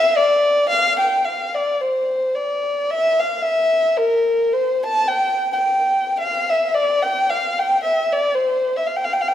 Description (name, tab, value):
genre	mexican folk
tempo	110 BPM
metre	2/4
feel	swing 55% on 8ths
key	F major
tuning	A4 = 436 Hz
part	dark violin	solo	0.0-9.3 s	Bb4 to A5	-16 LUFS	left 1 dB	none
room	moderate scoring stage reverb, RT60 1.8 s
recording	minimal, uncompressed stereo recording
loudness	-16 LUFS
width	side -11 dB against mid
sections	0.0-1.3 A section; 1.3-9.3 B section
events	none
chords	none